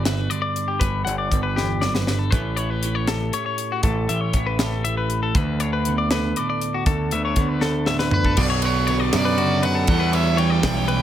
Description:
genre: math rock and midwest emo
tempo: 79 BPM (dotted quarters)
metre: 6/8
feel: straight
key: D major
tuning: A4 = 445 Hz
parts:
  - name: twelve-string electric guitar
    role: accompaniment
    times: 0.0-11.0 s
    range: D2 to A4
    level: -26 LUFS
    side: right 5 dB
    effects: spring reverb
  - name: clean electric guitar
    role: arpeggios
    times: 0.0-11.0 s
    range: F#4 to F#5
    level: -26 LUFS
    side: left 6 dB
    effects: spring reverb, plate reverb
  - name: growling picked electric bass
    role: bass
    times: 0.0-11.0 s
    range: G1 to F#2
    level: -24 LUFS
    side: equal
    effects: overdrive
  - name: crisp fusion drum kit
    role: drums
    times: 0.1-11.0 s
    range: crash cymbal, hi-hat, kick drum, ride cymbal, snare drum, toms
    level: -24 LUFS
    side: equal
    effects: none
  - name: biting overdriven guitar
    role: melody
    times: 8.1-11.0 s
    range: B4 to G5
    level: -24 LUFS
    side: right 2 dB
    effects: plate reverb
  - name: raw garage guitar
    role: riff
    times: 8.4-11.0 s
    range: B2 to E4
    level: -27 LUFS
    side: left 2 dB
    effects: overdrive
room: light reverb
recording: none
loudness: -19 LUFS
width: side -11 dB against mid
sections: 0.0-8.4 A section; 8.4-11.0 B section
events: drum fill 1.6-2.3, 7.6-8.4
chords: 0.0 Gmaj7; 2.3 A9; 5.4 D5; 8.4 Bm; 9.9 Em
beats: 0.06 | 0.82 1.57 | 2.33 3.09 | 3.85 4.61 | 5.36 6.12 | 6.87 7.63 | 8.38 9.14 | 9.89 10.64

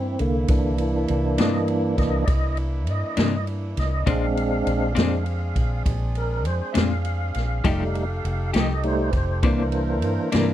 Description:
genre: slow blues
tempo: 67 BPM (dotted quarters)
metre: 12/8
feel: straight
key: unclear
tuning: A4 = 439 Hz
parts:
  - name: mellow horn section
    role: sustained chords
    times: 0.0-10.5 s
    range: E3 to Bb4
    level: -35 LUFS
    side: right 2 dB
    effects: none
  - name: tonewheel organ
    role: sustained chords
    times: 0.0-10.5 s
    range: D3 to F5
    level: -25 LUFS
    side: right 1 dB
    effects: slow rotary speaker, overdrive, chorus vibrato
  - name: vintage muted fingered electric bass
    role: bass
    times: 0.0-10.5 s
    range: F1 to G2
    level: -25 LUFS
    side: equal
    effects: none
  - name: swinging big-band drum kit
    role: drums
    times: 0.2-10.5 s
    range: kick drum, ride cymbal, snare drum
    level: -25 LUFS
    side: equal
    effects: none
  - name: clean electric guitar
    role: accompaniment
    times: 1.4-10.5 s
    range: Bb2 to G4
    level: -24 LUFS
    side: left 6 dB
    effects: tremolo
room: small room ambience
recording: none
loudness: -20 LUFS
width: side -12 dB against mid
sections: 0.0-10.5 A section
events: tonewheel organ solo 0.0-10.5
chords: 0.0 C9; 4.1 Bb9; 7.7 F9; 9.4 C9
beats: | 0.50 1.39 2.29 3.18 | 4.08 4.97 5.86 6.76 | 7.65 8.54 9.44 10.33

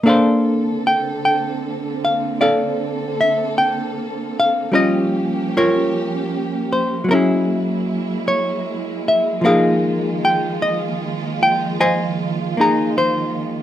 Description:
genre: jazz ballad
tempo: 51 BPM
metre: 4/4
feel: swing 69% on 8ths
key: unclear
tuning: A4 = 437 Hz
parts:
  - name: hollow-body jazz guitar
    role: accompaniment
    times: 0.0-13.6 s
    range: F3 to Bb5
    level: -17 LUFS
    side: left 1 dB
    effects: none
  - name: warm symphonic string section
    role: sustained chords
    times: 0.0-13.6 s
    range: D3 to A4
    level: -24 LUFS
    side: right 3 dB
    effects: none
room: little or no reverb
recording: close, detailed microphones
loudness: -16 LUFS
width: side -11 dB against mid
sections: 0.0-13.6 A section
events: none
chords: 0.0 Bbmaj9; 4.7 Gm7b5; 7.1 Gb9; 9.4 Fm7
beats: | 0.03 1.21 2.38 3.55 | 4.72 5.90 7.07 8.24 | 9.41 10.59 11.76 12.93

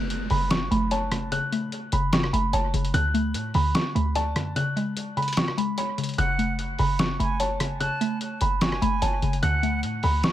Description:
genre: hip hop, trap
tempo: 148 BPM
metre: 4/4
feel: half-time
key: F# minor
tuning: A4 = 439 Hz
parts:
  - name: dark grand piano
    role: melody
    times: 0.0-10.3 s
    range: A5 to F#6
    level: -28 LUFS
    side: right 1 dB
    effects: low-pass filter, dub echo
  - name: mallet-like synth pluck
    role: accompaniment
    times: 0.0-10.3 s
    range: C#3 to D5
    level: -28 LUFS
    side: left 1 dB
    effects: chorus, phaser, low-pass filter, dub echo
  - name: short 808-style bass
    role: bass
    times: 0.0-10.2 s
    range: F#1 to A2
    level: -27 LUFS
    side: equal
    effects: none
  - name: downlifter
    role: sound effects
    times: 0.0-2.9 s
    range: none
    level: -38 LUFS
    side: right 4 dB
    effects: none
  - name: lo-fi sampler-style drum kit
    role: drums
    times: 0.1-10.3 s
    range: hi-hat, rim click, snare drum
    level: -29 LUFS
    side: equal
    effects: dub echo
  - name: silver concert flute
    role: second line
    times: 6.2-9.8 s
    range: F#5 to A5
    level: -33 LUFS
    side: right 3 dB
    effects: dub echo
room: little or no reverb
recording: echo-heavy mix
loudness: -22 LUFS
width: side -12 dB against mid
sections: 0.0-10.3 A section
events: break 4.6-6.2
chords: 0.0 F#m; 2.9 D; 4.6 C#sus4; 6.2 F#m; 9.4 D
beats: 0.10 0.51 0.91 | 1.32 1.72 2.13 2.54 | 2.94 3.35 3.75 4.16 | 4.56 4.97 5.37 5.78 | 6.18 6.59 7.00 7.40 | 7.80 8.21 8.62 9.02 | 9.43 9.83 10.24

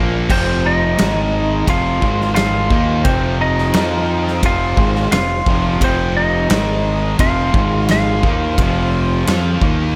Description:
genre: quiet-loud alternative rock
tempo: 87 BPM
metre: 4/4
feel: straight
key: F minor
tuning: A4 = 440 Hz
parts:
  - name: string machine, violas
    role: sustained chords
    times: 0.0-10.0 s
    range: Eb4 to Eb6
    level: -34 LUFS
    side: equal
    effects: none
  - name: overdriven semi-hollow guitar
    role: riff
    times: 0.0-10.0 s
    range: F2 to F4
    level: -24 LUFS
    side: equal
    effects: none
  - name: tight distorted guitar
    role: riff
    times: 0.0-10.0 s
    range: F2 to F4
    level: -26 LUFS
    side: equal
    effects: distortion
  - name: growling fingered electric bass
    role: bass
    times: 0.0-10.0 s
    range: F1 to F2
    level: -23 LUFS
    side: equal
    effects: overdrive
  - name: lightly driven lead guitar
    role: melody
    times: 0.3-10.0 s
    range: C4 to F5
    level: -22 LUFS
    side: equal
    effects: none
  - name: huge arena drum kit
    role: drums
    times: 0.3-9.8 s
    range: crash cymbal, kick drum, ride cymbal, snare drum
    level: -22 LUFS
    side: equal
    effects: none
room: light reverb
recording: none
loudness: -16 LUFS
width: mono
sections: 0.0-10.0 A section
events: none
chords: 0.0 Fm; 1.0 Ab5; 1.7 Fm; 2.0 Ab5; 2.7 Fm; 6.5 Ab5; 7.2 Fm; 7.5 Ab5; 8.2 Fm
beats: | 0.29 0.98 1.67 2.36 | 3.05 3.74 4.43 5.13 | 5.82 6.51 7.20 7.89 | 8.58 9.27

